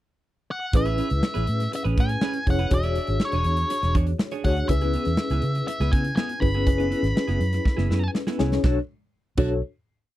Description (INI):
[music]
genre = polished 1980s jazz-funk pop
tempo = 122 BPM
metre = 4/4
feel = straight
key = B dorian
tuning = A4 = 439 Hz
[part]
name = octave-fuzz lead guitar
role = melody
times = 0.5-8.1 s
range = C#5 to B5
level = -29 LUFS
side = left 1 dB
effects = distortion
[part]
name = tine electric piano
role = accompaniment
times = 0.7-9.6 s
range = C#4 to C#5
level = -28 LUFS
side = left 3 dB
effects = fast tremolo, wide subtle chorus
[part]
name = clean electric guitar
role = riff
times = 0.7-9.5 s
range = B3 to D5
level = -31 LUFS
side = right 5 dB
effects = lush chorus
[part]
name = vintage muted fingered electric bass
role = bass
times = 0.7-9.6 s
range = E1 to C#3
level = -24 LUFS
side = equal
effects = none
[part]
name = modern studio drum kit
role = drums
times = 0.7-9.5 s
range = crash cymbal, hi-hat, kick drum, snare drum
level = -24 LUFS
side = equal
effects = none
[sound]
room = little or no reverb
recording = dry, close 1970s-style studio recording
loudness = -21 LUFS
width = side -14 dB against mid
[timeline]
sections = 0.0-0.7 pickup bar; 0.7-8.6 pre-chorus; 8.6-10.2 final chord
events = drum fill 7.6-8.6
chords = 0.0 N.C.; 0.7 Amaj9; 2.7 E13; 4.7 C#m7; 6.7 F#9sus4; 8.6 Bm7